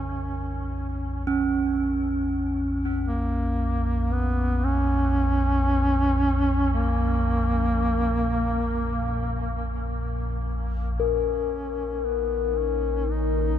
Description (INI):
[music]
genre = dark ambient drone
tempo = free time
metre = none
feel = none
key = Bb phrygian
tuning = A4 = 440 Hz
[part]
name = warm duduk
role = melody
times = 0.0-13.6 s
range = Bb3 to Eb4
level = -27 LUFS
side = right 1 dB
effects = tape echo
[part]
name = gamelan-type bronze metallophone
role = arpeggios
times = 0.0-7.6 s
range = Db3 to Db4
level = -29 LUFS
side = right 3 dB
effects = tape echo
[part]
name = deep rumbling drone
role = drone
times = 0.0-13.6 s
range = Bb1 to F2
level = -26 LUFS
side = equal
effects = built-in reverb, lush chorus
[part]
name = bronze singing bowl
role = texture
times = 0.0-13.6 s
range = Bb4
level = -27 LUFS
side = left 13 dB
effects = none
[part]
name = deep dark ambient pad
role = sustained chords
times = 12.2-13.6 s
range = Eb4 to Db5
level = -33 LUFS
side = right 3 dB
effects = chorus, built-in reverb
[sound]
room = moderate huge ambient reverb, RT60 9.0 s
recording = none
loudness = -22 LUFS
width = side -10 dB against mid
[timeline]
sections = 0.0-11.0 A section; 11.0-13.6 B section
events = fade-in on synth drone 0.0-11.0; fade-in on duduk 0.0-11.0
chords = 0.0 Bbm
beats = free time